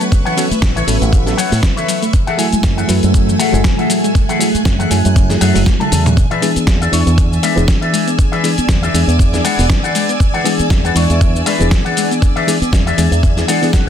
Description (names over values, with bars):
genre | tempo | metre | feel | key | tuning
nu-disco, nu disco | 119 BPM | 4/4 | swing 56% on 16ths | E mixolydian | A4 = 443 Hz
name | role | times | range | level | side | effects
reed electric piano | accompaniment | 0.0-13.9 s | E3 to C#6 | -20 LUFS | right 1 dB | sidechain pumping, tape echo
string machine, full ensemble | sustained chords | 0.0-13.9 s | A3 to F#6 | -21 LUFS | right 1 dB | ensemble chorus, sidechain pumping
soft round pluck | arpeggios | 0.0-13.8 s | C#3 to B3 | -21 LUFS | left 4 dB | chorus, cassette tape, sidechain pumping, dub echo
dusty soul sampler-style drum kit | drums | 0.0-13.8 s | cabasa, hi-hat, snare drum, toms | -20 LUFS | left 1 dB | studio reverb
electronic kick drum | drums | 0.1-13.8 s | none | -13 LUFS | equal | studio reverb
electric guitar with an envelope filter | riff | 0.3-13.9 s | G#4 to A5 | -21 LUFS | left 3 dB | lush chorus, tape echo
fingered electric bass with an envelope filter | bass | 0.5-13.9 s | E1 to A2 | -16 LUFS | equal | none
room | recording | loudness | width
light reverb | dense, heavily limited modern master | -11 LUFS | side -9 dB against mid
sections
0.0-13.9 A section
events
drum fill 5.7-6.2; clean electric guitar fill 12.7-13.9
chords
0.0 A69; 2.1 F#m9; 6.2 E7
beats
| 0.12 0.62 1.13 1.63 | 2.13 2.64 3.14 3.65 | 4.15 4.66 5.16 5.67 | 6.17 6.67 7.18 7.68 | 8.19 8.69 9.19 9.70 | 10.20 10.71 11.21 11.71 | 12.22 12.72 13.23 13.73